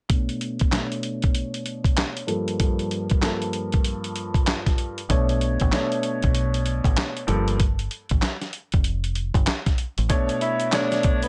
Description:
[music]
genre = hip hop, boom-bap hip-hop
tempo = 96 BPM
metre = 4/4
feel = swing 63% on 16ths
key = B minor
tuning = A4 = 440 Hz
[part]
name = clear upright piano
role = accompaniment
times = 0.1-11.3 s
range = G2 to C#5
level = -29 LUFS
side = equal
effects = cassette tape, high-pass filter, low-pass filter, plate reverb
[part]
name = dusty soul sampler-style drum kit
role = drums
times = 0.1-11.3 s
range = handclaps, hi-hat, kick drum, snare drum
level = -25 LUFS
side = equal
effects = none
[part]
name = deep dub fingered electric bass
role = bass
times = 5.1-10.1 s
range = F1 to B1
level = -27 LUFS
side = equal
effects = none
[part]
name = egg shaker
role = percussion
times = 10.1-11.3 s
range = none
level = -46 LUFS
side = equal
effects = none
[part]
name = breathy tenor saxophone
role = melody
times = 10.4-11.3 s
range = B3 to E4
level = -27 LUFS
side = equal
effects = high-pass filter, low-pass filter, plate reverb
[sound]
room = light reverb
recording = nothing above 10.4 kHz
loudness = -24 LUFS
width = mono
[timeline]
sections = 0.1-10.1 A section; 10.1-11.3 B section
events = filter sweep on upright piano 0.1-10.1; break 7.6-10.1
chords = 0.1 Bm9; 2.3 Gm9; 5.1 Bm9; 7.3 G7sus2; 10.1 Bm9

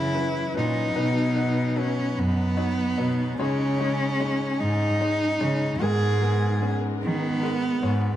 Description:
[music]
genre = acoustic folk-pop ballad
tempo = 49 BPM (dotted quarters)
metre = 6/8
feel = straight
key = unclear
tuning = A4 = 440 Hz
[part]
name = warm cello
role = melody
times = 0.0-8.2 s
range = B3 to G#4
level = -26 LUFS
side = right 1 dB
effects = slapback echo
[part]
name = bright upright piano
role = accompaniment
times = 0.0-8.2 s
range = F#1 to C#5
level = -31 LUFS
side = left 3 dB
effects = none
[part]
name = warm studio string section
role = sustained chords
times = 0.0-8.2 s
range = C#3 to B4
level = -37 LUFS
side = equal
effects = none
[part]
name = warm cello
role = bass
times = 0.0-8.2 s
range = F#2 to D#3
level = -25 LUFS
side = equal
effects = none
[sound]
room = light reverb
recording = dark, warm production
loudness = -22 LUFS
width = side -12 dB against mid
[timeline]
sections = 0.0-8.2 A section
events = none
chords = 0.0 F#sus4; 1.0 B; 3.4 C#sus2; 5.8 G#madd9

